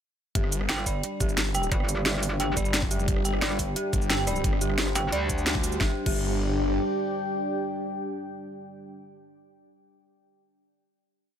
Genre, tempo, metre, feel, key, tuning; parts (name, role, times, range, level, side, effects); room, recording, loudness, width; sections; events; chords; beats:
dark technical drum and bass; 176 BPM; 4/4; straight; A4 = 440 Hz
dark analog pad; sustained chords; 0.8-8.9 s; G3 to G4; -34 LUFS; equal; chorus, sidechain pumping
dark detuned synth bell; arpeggios; 0.4-6.2 s; G4 to G5; -33 LUFS; right 2 dB; chorus, sidechain pumping, tape echo
snarling distorted saw bass; bass; 0.4-6.8 s; G1; -29 LUFS; equal; distortion, overdrive
drum and bass drum kit; drums; 0.4-6.2 s; crash cymbal, hi-hat, rim click, shaker, snare drum; -29 LUFS; equal; overdrive
electronic kick drum; drums; 0.4-6.2 s; -28 LUFS; equal; overdrive
deep dark ambient pad; texture; 1.5-9.1 s; D4 to G5; -33 LUFS; left 1 dB; chorus, built-in reverb, sidechain pumping
metallic wobble bass; bass; 0.7-5.8 s; G1 to D2; -29 LUFS; equal; chorus, tube saturation
light reverb, digital ambience; -24 LUFS; side -9 dB against mid
0.4-5.8 drop; 5.8-8.5 final chord
drop 0.4-5.8; band accent 5.5
0.4 G5
| 0.35 0.69 1.03 1.38 | 1.72 2.06 2.40 2.74 | 3.08 3.42 3.76 4.10 | 4.44 4.78 5.12 5.47 | 5.81 6.15 6.49 6.83 | 7.17 7.51 7.85 8.19